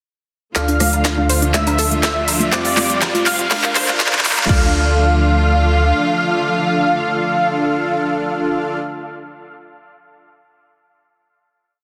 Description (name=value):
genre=progressive house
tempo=122 BPM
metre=4/4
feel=straight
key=D minor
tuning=A4 = 440 Hz
part: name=unison lead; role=melody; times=0.6-8.8 s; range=D5 to F5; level=-24 LUFS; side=equal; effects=ensemble chorus, sidechain pumping, dub echo
part: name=soft synth bell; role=second line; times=0.6-8.8 s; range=D6 to F6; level=-29 LUFS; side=equal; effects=chorus, phaser, vintage 12-bit sampler grit, sidechain pumping, dub echo
part: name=clear symphonic string section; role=sustained chords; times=0.6-8.8 s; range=C3 to F4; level=-27 LUFS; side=equal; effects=sidechain pumping
part: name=unison pluck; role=arpeggios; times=0.6-8.8 s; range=D4 to F5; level=-27 LUFS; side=equal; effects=vintage 12-bit sampler grit, sidechain pumping, dub echo
part: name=supersaw stab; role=stabs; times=0.6-8.8 s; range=C4 to F5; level=-24 LUFS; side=equal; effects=sidechain pumping, low-pass filter, dub echo
part: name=saturated sub bass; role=bass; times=0.6-5.9 s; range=Bb1 to F2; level=-21 LUFS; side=equal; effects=sidechain pumping
part: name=big-room dance drum kit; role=drums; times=0.6-4.6 s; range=crash cymbal, handclaps, hi-hat, rim click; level=-22 LUFS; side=equal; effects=none
part: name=electronic kick drum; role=drums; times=0.6-4.6 s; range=none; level=-20 LUFS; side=equal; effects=overdrive, high-pass filter on kick
part: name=tight metal drum kit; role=drums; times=0.6-4.4 s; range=hi-hat, shaker, snare drum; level=-30 LUFS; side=equal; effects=high-pass filter on hats, high-pass filter on snare, high-pass filter on perc, high-pass filter on room
part: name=riser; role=sound effects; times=2.2-4.5 s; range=none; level=-29 LUFS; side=equal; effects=none
part: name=congas and woodblock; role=percussion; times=0.8-4.5 s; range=none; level=-29 LUFS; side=equal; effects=sidechain pumping on perc
room=moderate lush hall reverb, RT60 2.3 s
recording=dense, heavily limited modern master, high-pass filter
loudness=-16 LUFS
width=mono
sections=0.6-4.5 build; 4.5-8.4 final chord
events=build-up 0.6-4.5; drum fill 0.6-4.5; filter sweep on synth pluck 0.6-4.5; filter sweep on supersaw synth 0.6-4.5; filter sweep 0.6-4.5; riser 2.2-4.5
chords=0.6 Dm; 2.5 Fsus2; 3.5 Bb; 4.5 Dm